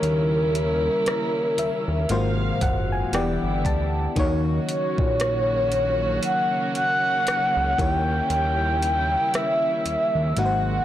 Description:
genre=contemporary R&B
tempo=58 BPM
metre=4/4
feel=swing 58% on 16ths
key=unclear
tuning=A4 = 440 Hz
part: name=mellow horn-like synth lead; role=melody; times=0.0-10.8 s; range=Bb4 to G5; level=-23 LUFS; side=equal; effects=chorus, tape echo
part: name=FM electric piano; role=accompaniment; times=0.0-10.8 s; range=Ab2 to A5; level=-28 LUFS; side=left 2 dB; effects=chorus
part: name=warm studio string section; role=sustained chords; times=0.0-10.8 s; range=C3 to F5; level=-30 LUFS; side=right 2 dB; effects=none
part: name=fat analog bass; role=bass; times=0.0-10.8 s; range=E1 to Eb2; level=-26 LUFS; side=equal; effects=none
part: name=smooth R&B drum kit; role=drums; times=0.0-10.6 s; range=hi-hat, kick drum, rim click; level=-27 LUFS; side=equal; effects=none
room=light reverb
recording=blown-out, overdriven recording, overdrive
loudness=-20 LUFS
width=side -12 dB against mid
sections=0.0-10.8 A section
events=FM electric piano fill 1.1-4.2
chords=0.0 Eb7b9; 2.1 Ab13; 3.1 Em7; 4.2 Ebm7; 7.8 Eb7b9

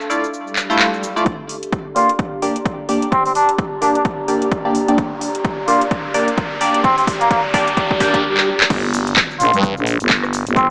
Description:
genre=bass house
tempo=129 BPM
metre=4/4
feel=swing 58% on 16ths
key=G minor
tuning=A4 = 438 Hz
part: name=house drum kit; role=drums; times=0.0-10.7 s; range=crash cymbal, handclaps, hi-hat, rim click, shaker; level=-22 LUFS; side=equal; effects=overdrive
part: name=warbly tape-like pad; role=texture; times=0.0-8.2 s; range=D4 to Bb5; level=-28 LUFS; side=equal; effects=chorus, built-in reverb, sidechain pumping
part: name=band-passed chord stab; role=stabs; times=0.1-8.2 s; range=A3 to D5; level=-22 LUFS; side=equal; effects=phaser, cassette tape, sidechain pumping, digital delay
part: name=swell, riser and impact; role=sound effects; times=0.5-10.6 s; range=none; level=-28 LUFS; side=equal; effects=none
part: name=electronic kick drum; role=drums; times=1.3-10.7 s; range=none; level=-25 LUFS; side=equal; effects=overdrive
part: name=trumpet with cup mute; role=melody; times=2.0-10.6 s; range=Bb3 to F4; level=-20 LUFS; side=equal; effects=digital delay
part: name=growling FM bass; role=bass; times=8.7-10.7 s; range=G1 to G2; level=-20 LUFS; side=equal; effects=sidechain pumping
room=moderate digital room reverb, RT60 1.1 s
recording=small speaker sound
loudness=-17 LUFS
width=mono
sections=0.0-1.3 A section; 1.3-8.7 B section; 8.7-10.7 C section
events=swell 0.5-1.3, 7.8-8.7; build-up 1.3-8.7; filter sweep on synth stab 1.3-8.7; riser 3.5-8.2; drum fill 5.0-8.2, 8.4-8.7; drop 8.7-10.7; impact 8.7-10.6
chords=0.0 Dmadd9; 1.3 Gm

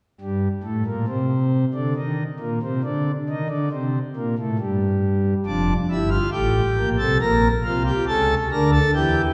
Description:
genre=classical, baroque-style 3-part fugue for pipe organ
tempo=69 BPM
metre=3/4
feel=straight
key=unclear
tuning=A4 = 438 Hz
part: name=pipe organ, principal chorus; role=solo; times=0.2-9.3 s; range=F1 to Bb4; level=-22 LUFS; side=equal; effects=none
room=wet concert hall reverb, RT60 1.9 s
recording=none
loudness=-22 LUFS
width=mono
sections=0.2-9.3 A section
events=none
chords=0.2 N.C.; 5.5 Dm/F; 7.2 Bb5; 8.1 A/C#

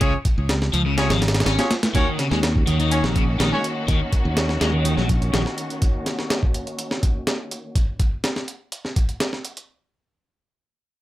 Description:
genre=breakbeat, breaks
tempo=124 BPM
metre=4/4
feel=straight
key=Eb minor pentatonic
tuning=A4 = 440 Hz
part: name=crunchy overdriven guitar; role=riff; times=0.0-5.4 s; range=Db3 to Db4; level=-25 LUFS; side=left 1 dB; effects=spring reverb, low-pass filter, digital delay
part: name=warm horn section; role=stabs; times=0.0-3.7 s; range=Db4 to Db5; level=-27 LUFS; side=equal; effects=digital delay
part: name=modern bright fingered electric bass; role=bass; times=0.0-5.4 s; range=Ab1 to Eb2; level=-22 LUFS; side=equal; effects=tube saturation, low-pass filter
part: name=breakbeat sampler-style drum kit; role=drums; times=0.0-9.7 s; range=hi-hat, kick drum, snare drum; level=-22 LUFS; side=equal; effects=none
part: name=clear studio string section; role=sustained chords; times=1.9-7.7 s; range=Eb3 to Gb4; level=-29 LUFS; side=left 1 dB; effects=sidechain pumping, low-pass filter
room=little or no reverb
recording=none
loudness=-19 LUFS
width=side -15 dB against mid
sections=0.0-1.9 A section; 1.9-9.7 B section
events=filter sweep on string section 1.9-7.8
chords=0.0 Db; 1.9 Ebm7

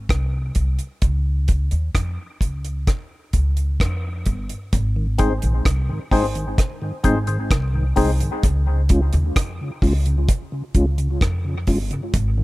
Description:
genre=dub reggae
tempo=65 BPM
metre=4/4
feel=straight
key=unclear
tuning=A4 = 440 Hz
part: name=upright bass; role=bass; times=0.0-12.4 s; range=G1 to F2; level=-21 LUFS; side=equal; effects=none
part: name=deep reggae drum kit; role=drums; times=0.1-12.4 s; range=hi-hat, kick drum, rim click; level=-20 LUFS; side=equal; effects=none
part: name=mellow tonewheel organ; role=accompaniment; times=5.0-12.4 s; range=Ab2 to F4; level=-26 LUFS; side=equal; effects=chorus vibrato, stopped rotary speaker, dub echo
part: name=percussive organ stab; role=stabs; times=5.2-8.1 s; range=C4 to C5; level=-25 LUFS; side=left 3 dB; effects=chorus, phaser, low-pass filter, dub echo
room=small room reverb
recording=none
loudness=-18 LUFS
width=side -19 dB against mid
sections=0.0-4.7 A section; 4.7-12.4 B section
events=break 0.0-4.7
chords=0.0 N.C.; 1.0 Db; 4.7 Ab; 8.4 Db

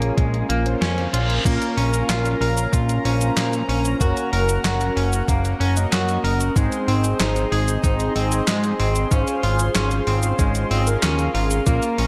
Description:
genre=synthwave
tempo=94 BPM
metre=4/4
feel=straight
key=Bb minor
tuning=A4 = 440 Hz
part: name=chorused pulse-width pad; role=sustained chords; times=0.0-12.1 s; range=Db4 to C6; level=-29 LUFS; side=equal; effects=sidechain pumping
part: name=semi-hollow electric guitar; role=arpeggios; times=0.0-12.1 s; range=Ab3 to Bb4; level=-29 LUFS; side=equal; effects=delay
part: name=mellow synth brass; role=stabs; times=0.0-12.1 s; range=Bb3 to Eb5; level=-29 LUFS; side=equal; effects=chorus, phaser, cassette tape, delay
part: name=fat analog bass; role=bass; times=0.0-12.1 s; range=Gb1 to Bb2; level=-24 LUFS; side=equal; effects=none
part: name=clean 12-bit digital drum machine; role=drums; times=0.0-12.1 s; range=crash cymbal, handclaps, hi-hat, shaker, snare drum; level=-28 LUFS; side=equal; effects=studio reverb, gated reverb
part: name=electronic kick drum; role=drums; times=0.2-11.8 s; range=none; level=-23 LUFS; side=equal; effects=studio reverb
part: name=reverse cymbal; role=sound effects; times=1.0-1.5 s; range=none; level=-32 LUFS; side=equal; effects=none
room=light reverb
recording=none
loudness=-20 LUFS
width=mono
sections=0.0-1.5 A section; 1.5-12.1 B section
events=kick drops out 0.8-1.5; band accent 0.8-1.1; reverse cymbal 1.0-1.5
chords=0.0 Bbm7; 1.5 Bbm; 4.0 Gb; 6.6 Ab; 9.1 Dbmaj7/Ab

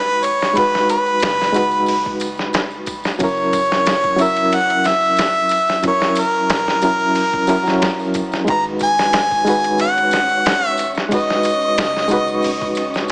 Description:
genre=trip hop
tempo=91 BPM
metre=4/4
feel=swing 54% on 16ths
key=G# minor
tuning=A4 = 440 Hz
part: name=clear harmonica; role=melody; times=0.0-13.1 s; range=A#4 to A#5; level=-16 LUFS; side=equal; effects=tape echo
part: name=reed electric piano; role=accompaniment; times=0.0-13.1 s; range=F#3 to C#5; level=-20 LUFS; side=equal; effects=tremolo, low-pass filter, tape echo
part: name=soft 808-style bass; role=bass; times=0.0-13.1 s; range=E1 to G#1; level=-41 LUFS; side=equal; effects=none
part: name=tambourine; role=percussion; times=0.1-13.1 s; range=none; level=-36 LUFS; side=equal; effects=none
part: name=boom bap sampler-style drum kit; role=drums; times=0.2-13.1 s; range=hi-hat, kick drum, ride cymbal, snare drum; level=-23 LUFS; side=equal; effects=none
part: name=wind-like tuned noise texture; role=texture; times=9.3-13.1 s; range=C#4 to C#5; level=-29 LUFS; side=equal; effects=built-in reverb
room=light reverb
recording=small speaker sound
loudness=-14 LUFS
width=side -28 dB against mid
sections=0.0-13.1 A section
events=none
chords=0.0 G#m7; 3.2 F#7; 8.5 G#m7

